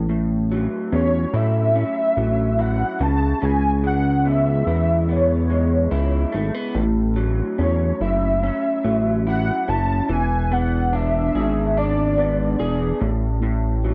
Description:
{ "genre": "indie pop, bedroom pop", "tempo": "72 BPM", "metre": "4/4", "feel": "straight", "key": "A major", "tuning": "A4 = 442 Hz", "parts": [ { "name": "electric guitar through a small old amp", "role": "accompaniment", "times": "0.0-13.9 s", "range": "A2 to G#4", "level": "-27 LUFS", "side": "equal", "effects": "analog chorus, vibrato effect" }, { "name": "chorused synth bass", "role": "bass", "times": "0.0-13.9 s", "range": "E1 to A2", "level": "-22 LUFS", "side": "equal", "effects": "none" }, { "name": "warm velvety synth lead", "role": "melody", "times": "0.9-13.0 s", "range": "C#5 to A5", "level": "-26 LUFS", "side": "equal", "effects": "ensemble chorus, tape echo" } ], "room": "little or no reverb", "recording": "dry, close 1970s-style studio recording", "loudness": "-20 LUFS", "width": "mono", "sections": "0.0-13.9 A section", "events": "none", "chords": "0.0 A6; 3.0 C#m7; 6.8 A6; 10.1 E7; 13.0 A5", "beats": "| 0.10 0.93 1.76 2.59 | 3.42 4.26 5.09 5.92 | 6.76 7.59 8.42 9.26 | 10.09 10.93 11.76 12.60 | 13.43" }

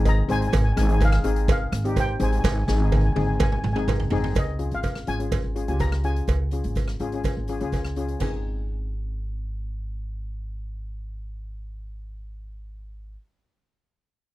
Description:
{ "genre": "calypso", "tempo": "125 BPM", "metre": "4/4", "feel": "straight", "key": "Ab major", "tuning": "A4 = 440 Hz", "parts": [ { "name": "steel pan", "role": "melody", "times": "0.0-13.2 s", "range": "Ab4 to Bb5", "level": "-31 LUFS", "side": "left 1 dB", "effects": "none" }, { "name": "steel pan", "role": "accompaniment", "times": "0.0-13.2 s", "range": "C4 to Ab4", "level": "-29 LUFS", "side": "left 5 dB", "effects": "none" }, { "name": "upright bass", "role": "bass", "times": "0.0-13.1 s", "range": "Ab1 to Db2", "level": "-26 LUFS", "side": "equal", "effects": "none" }, { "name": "street-band drum kit", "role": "drums", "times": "0.1-8.3 s", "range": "hi-hat, kick drum, rim click, snare drum, splash cymbal, toms", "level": "-26 LUFS", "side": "equal", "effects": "none" }, { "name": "cowbell", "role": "percussion", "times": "0.1-8.4 s", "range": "none", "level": "-30 LUFS", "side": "right 10 dB", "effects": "none" } ], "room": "little or no reverb", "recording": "dry, close 1970s-style studio recording", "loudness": "-22 LUFS", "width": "side -16 dB against mid", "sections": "0.0-4.4 A section; 4.4-8.2 B section; 8.2-12.1 C section", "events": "drum fill 2.4-4.4", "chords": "0.0 Ab6; 4.4 Db; 8.2 Ab", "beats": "0.05 | 0.53 1.01 1.49 1.96 | 2.44 2.92 3.40 3.88 | 4.36 4.84 5.32 5.80 | 6.28 6.76 7.25 7.73 | 8.21 8.69 9.18 9.66 | 10.14 10.62 11.11 11.59" }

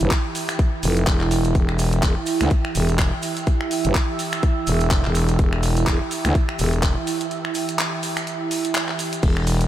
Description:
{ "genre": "bass house", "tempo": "125 BPM", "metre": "4/4", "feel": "swing 57% on 16ths", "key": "E minor", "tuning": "A4 = 440 Hz", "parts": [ { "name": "sweeping resonant pad", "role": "sustained chords", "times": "0.0-9.7 s", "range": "E4 to E6", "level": "-26 LUFS", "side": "right 5 dB", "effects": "chorus, sidechain pumping" }, { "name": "growling FM bass", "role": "bass", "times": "0.0-9.7 s", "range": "E1 to D2", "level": "-20 LUFS", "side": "equal", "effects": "overdrive, sidechain pumping" }, { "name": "house drum kit", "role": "drums", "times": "0.0-9.7 s", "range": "crash cymbal, finger snaps, handclaps, hi-hat", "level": "-26 LUFS", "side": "left 1 dB", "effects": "none" }, { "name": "maracas", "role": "percussion", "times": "0.0-9.7 s", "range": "none", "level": "-35 LUFS", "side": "right 4 dB", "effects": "none" }, { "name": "electronic kick drum", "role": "drums", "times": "0.1-9.3 s", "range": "none", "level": "-20 LUFS", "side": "equal", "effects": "none" } ], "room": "light reverb, digital ambience", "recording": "none", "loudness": "-18 LUFS", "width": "side -12 dB against mid", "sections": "0.0-9.7 A section", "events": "break 7.3-9.2", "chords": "0.0 Em", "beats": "0.11 0.59 1.07 | 1.55 2.03 2.51 2.99 | 3.47 3.95 4.43 4.91 | 5.39 5.87 6.35 6.83 | 7.31 7.79 8.27 8.75 | 9.23" }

